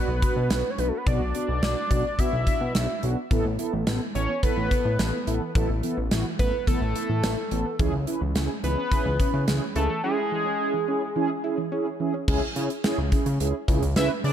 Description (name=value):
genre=synth-pop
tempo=107 BPM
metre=4/4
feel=straight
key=unclear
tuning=A4 = 441 Hz
part: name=fat analog lead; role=melody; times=0.0-14.3 s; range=G#4 to E5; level=-29 LUFS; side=equal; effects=chorus, phaser, digital delay
part: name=mellow synth brass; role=accompaniment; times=0.0-14.3 s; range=B3 to B4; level=-29 LUFS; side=right 1 dB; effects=chorus
part: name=fat analog bass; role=bass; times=0.1-14.3 s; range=A1 to C#3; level=-26 LUFS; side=equal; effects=none
part: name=gated 80s drum kit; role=drums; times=0.2-14.3 s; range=crash cymbal, hi-hat, kick drum, snare drum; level=-26 LUFS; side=equal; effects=none
part: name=soft round pluck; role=arpeggios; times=3.3-12.3 s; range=E3 to E4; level=-34 LUFS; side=right 4 dB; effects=chorus, digital delay
room=light reverb, studio reverb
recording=dark, warm production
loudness=-22 LUFS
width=side -10 dB against mid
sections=0.0-12.3 A section; 12.3-14.3 B section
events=silent gap 10.0-12.3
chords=0.0 Bm; 3.3 Asus2; 7.8 C#m